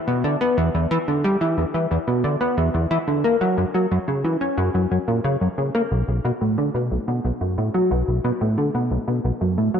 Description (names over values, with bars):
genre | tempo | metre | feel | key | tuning
ambient | 90 BPM | 4/4 | straight | B minor from 5.9 s | A4 = 440 Hz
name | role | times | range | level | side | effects
plucky analog bass | solo | 0.1-9.8 s | B1 to C#4 | -19 LUFS | equal | wide subtle chorus, ping-pong delay
room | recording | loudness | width
wet spring reverb, RT60 2.2 s | echo-heavy mix | -19 LUFS | side -7 dB against mid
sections
0.0-5.9 A section; 5.9-9.8 B section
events
none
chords
none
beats
| 0.58 1.24 1.91 2.58 | 3.24 3.91 4.58 5.24 | 5.91 6.58 7.24 7.91 | 8.58 9.24